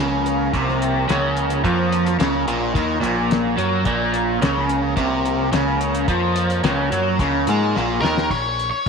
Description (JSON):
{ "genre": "psychedelic rock", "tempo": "108 BPM", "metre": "4/4", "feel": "straight", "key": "Bb minor", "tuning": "A4 = 443 Hz", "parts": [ { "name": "combo organ", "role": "sustained chords", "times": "0.0-8.3 s", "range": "F3 to Db5", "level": "-28 LUFS", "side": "right 8 dB", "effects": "none" }, { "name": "overdriven electric guitar", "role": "riff", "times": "0.0-8.3 s", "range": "Bb2 to Ab3", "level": "-19 LUFS", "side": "equal", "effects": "phaser" }, { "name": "growling picked electric bass", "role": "bass", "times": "0.0-8.9 s", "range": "Bb1 to Ab2", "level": "-24 LUFS", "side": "right 1 dB", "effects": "overdrive" }, { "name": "cloth-damped thuddy drum kit", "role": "drums", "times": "0.3-8.9 s", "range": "crash cymbal, hi-hat, kick drum, snare drum", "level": "-25 LUFS", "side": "left 4 dB", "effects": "none" }, { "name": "octave-fuzz lead guitar", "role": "melody", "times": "8.0-8.9 s", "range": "Bb4 to Db5", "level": "-21 LUFS", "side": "left 2 dB", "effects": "distortion, slapback echo" } ], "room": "moderate plate reverb, RT60 1.4 s, small room reverb", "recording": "1960s-style stereo", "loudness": "-17 LUFS", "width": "side -5 dB against mid", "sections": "0.0-8.3 A section", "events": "drum fill 7.8-8.3", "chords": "0.0 Bbm; 8.3 Bb5" }